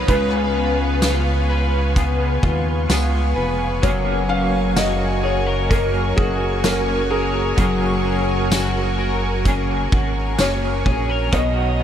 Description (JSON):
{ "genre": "dream pop", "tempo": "64 BPM", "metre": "4/4", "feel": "straight", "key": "F# major", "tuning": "A4 = 440 Hz", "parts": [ { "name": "felt-muted upright piano", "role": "melody", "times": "0.0-11.8 s", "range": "G#4 to E#5", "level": "-25 LUFS", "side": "equal", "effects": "analog chorus, diffuse ambient delay" }, { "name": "semi-hollow electric guitar", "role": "accompaniment", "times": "0.0-11.8 s", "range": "B2 to G#4", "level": "-28 LUFS", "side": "right 1 dB", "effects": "tremolo, analog chorus" }, { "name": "string machine, cellos", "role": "sustained chords", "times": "0.0-11.8 s", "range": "B3 to D#6", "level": "-25 LUFS", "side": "right 1 dB", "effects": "ensemble chorus" }, { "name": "electric guitar at the edge of break-up", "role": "arpeggios", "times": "0.0-11.8 s", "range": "B2 to B4", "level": "-24 LUFS", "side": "left 3 dB", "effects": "analog chorus, diffuse ambient delay" }, { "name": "chorused synth bass", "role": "bass", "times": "0.0-11.8 s", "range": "E#1 to D#2", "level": "-22 LUFS", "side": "equal", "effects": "none" }, { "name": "loose indie drum kit", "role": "drums", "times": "0.1-11.5 s", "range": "hi-hat, kick drum, snare drum, tambourine", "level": "-21 LUFS", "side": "equal", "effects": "none" } ], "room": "moderate huge ambient reverb, RT60 7.0 s", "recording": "dreamy mix soaked in reverb", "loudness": "-17 LUFS", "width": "side -9 dB against mid", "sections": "0.0-11.8 A section", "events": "none", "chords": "0.1 C#7; 3.8 F#add9; 11.3 B" }